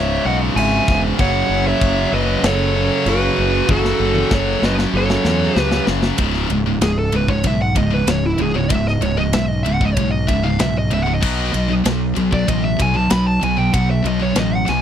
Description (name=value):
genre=heavy metal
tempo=96 BPM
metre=4/4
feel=straight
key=C# minor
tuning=A4 = 440 Hz
part: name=high-gain lead guitar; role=melody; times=0.0-14.8 s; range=E4 to B5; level=-22 LUFS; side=equal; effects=distortion
part: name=high-gain lead guitar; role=second line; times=0.0-5.8 s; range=F#4 to E5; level=-24 LUFS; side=right 4 dB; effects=distortion
part: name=heavy high-gain guitar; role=riff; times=0.0-14.8 s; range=C#2 to B3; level=-23 LUFS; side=left 11 dB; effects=distortion
part: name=scooped high-gain guitar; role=riff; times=0.0-14.8 s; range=C#2 to B3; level=-23 LUFS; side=right 10 dB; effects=distortion
part: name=tight distorted guitar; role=riff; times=0.0-6.2 s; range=C#2 to F#3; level=-25 LUFS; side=right 1 dB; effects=distortion
part: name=fuzz fingered electric bass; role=bass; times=0.0-14.8 s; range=C#1 to E2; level=-21 LUFS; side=equal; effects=overdrive
part: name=tight metal drum kit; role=drums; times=0.6-14.8 s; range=crash cymbal, kick drum, ride cymbal, snare drum, toms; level=-21 LUFS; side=left 1 dB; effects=none
room=little or no reverb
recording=dry, close 1970s-style studio recording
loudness=-15 LUFS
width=side -9 dB against mid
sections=0.0-6.2 A section; 6.2-14.8 B section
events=half time 0.0-6.2; drum fill 3.7-6.2; lead electric guitar solo 6.2-14.8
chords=0.0 C#m; 1.2 F#m; 6.2 C#5; 11.2 B5